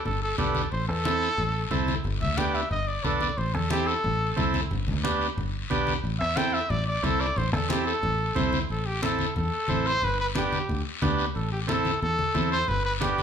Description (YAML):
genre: latin, cumbia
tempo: 180 BPM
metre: 4/4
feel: straight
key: A minor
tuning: A4 = 438 Hz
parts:
  - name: clear trumpet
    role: melody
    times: 0.0-13.2 s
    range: G4 to G5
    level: -28 LUFS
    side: equal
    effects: none
  - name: fingered electric bass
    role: bass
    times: 0.1-13.2 s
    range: G1 to E2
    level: -29 LUFS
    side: left 1 dB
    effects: none
  - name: congas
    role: percussion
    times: 0.1-13.2 s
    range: none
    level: -32 LUFS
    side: left 2 dB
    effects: none
  - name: guiro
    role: percussion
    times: 0.1-13.2 s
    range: none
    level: -37 LUFS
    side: left 5 dB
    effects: none
  - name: combo organ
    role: accompaniment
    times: 0.4-13.2 s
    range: B3 to C5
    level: -29 LUFS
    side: right 3 dB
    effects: none
room: moderate large studio reverb, RT60 0.8 s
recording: band playing live in one room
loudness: -24 LUFS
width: side -8 dB against mid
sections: 0.0-8.7 A section; 8.7-13.2 B section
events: trumpet solo 0.0-8.7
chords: 0.0 G; 0.7 Am; 2.1 G; 3.4 Am; 4.7 G; 6.0 Am; 10.0 G; 11.4 Am; 12.7 G